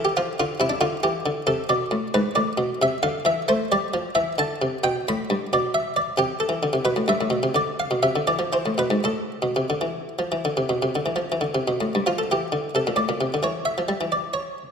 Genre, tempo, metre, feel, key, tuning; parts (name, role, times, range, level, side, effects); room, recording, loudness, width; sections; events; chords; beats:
classical, baroque-style suite movement for harpsichord; 77-92 BPM (dotted quarters); 12/8; rubato; A minor; A4 = 440 Hz
buff-stop harpsichord; solo; 0.0-14.7 s; G2 to B5; -21 LUFS; equal
wet concert hall reverb, RT60 1.8 s; -21 LUFS; side -6 dB against mid
0.0-12.1 A section; 12.1-14.7 A section
0.0 Bb (rootless); 0.8 D5; 2.1 E7(no3); 3.5 Am; 4.8 G; 6.2 C; 7.6 Bdim; 8.3 E; 9.0 Am; 12.1 Dm; 13.4 E5
0.15 | 0.80 1.48 2.14 2.81 | 3.48 4.16 4.84 5.52 | 6.19 6.87 7.56 8.28 | 9.02 9.80 10.56 11.31 | 12.05 12.75 13.44 14.12